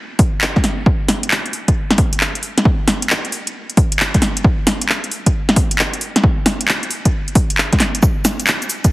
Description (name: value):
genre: UK garage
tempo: 134 BPM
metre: 4/4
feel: swing 66% on 16ths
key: none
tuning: none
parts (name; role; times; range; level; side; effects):
- electronic kick drum; drums; 0.2-8.9 s; none; -15 LUFS; equal; overdrive
- house drum kit; drums; 0.2-8.9 s; handclaps, hi-hat, shaker, snare drum; -17 LUFS; equal; overdrive
room: light reverb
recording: heavily compressed radio sound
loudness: -14 LUFS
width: side -19 dB against mid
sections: 0.0-8.9 A section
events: none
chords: none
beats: 0.41 | 0.86 1.31 1.76 2.21 | 2.65 3.10 3.55 4.00 | 4.44 4.89 5.34 5.79 | 6.24 6.68 7.13 7.58 | 8.03 8.47